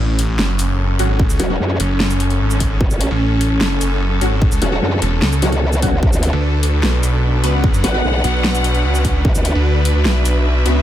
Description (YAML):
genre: heavy wobble dubstep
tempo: 149 BPM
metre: 4/4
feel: half-time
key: F# minor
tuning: A4 = 439 Hz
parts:
  - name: snarling distorted saw bass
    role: bass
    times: 0.0-10.8 s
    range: E1 to F#2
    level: -16 LUFS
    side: equal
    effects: distortion, overdrive
  - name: sub drop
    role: sound effects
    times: 0.0-1.2 s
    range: none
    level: barely audible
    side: none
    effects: none
  - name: clear symphonic string section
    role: texture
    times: 0.0-10.8 s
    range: C#4 to F#5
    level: -22 LUFS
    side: equal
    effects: sidechain pumping
  - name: dubstep drum kit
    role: drums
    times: 0.2-10.7 s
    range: hi-hat, shaker, snare drum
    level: -22 LUFS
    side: equal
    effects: none
  - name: orchestra-hit-like synth stab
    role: stabs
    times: 1.0-1.5, 4.2-8.0, 10.7 s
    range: F#3 to B4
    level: -23 LUFS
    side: left 1 dB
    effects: built-in reverb, phaser, ping-pong delay
  - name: electronic kick drum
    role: drums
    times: 1.2-9.3 s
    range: none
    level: -16 LUFS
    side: equal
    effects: none
  - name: growl bass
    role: bass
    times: 1.4-9.5 s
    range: E1 to F#2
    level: -17 LUFS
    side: equal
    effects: chorus, overdrive
room: little or no reverb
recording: none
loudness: -14 LUFS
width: side -12 dB against mid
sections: 0.0-10.8 A section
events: impact 0.0-1.2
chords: 0.0 F#m; 6.0 Bm